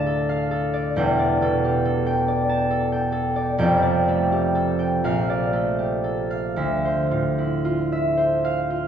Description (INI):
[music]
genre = classical, solo harp piece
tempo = 37-47 BPM (dotted quarters)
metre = 6/8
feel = rubato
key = D minor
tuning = A4 = 440 Hz
[part]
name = concert harp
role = solo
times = 0.0-8.9 s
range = E1 to A5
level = -20 LUFS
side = equal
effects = none
[sound]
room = wet scoring stage reverb, RT60 1.6 s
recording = heard from further back in the room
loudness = -20 LUFS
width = side -8 dB against mid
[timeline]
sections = 0.0-8.9 A section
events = none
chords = 0.0 Dm; 1.0 Em7; 3.6 F69; 5.1 Bbmaj7; 6.6 Dm9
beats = | 0.96 2.28 | 3.61 5.06 | 6.60 8.19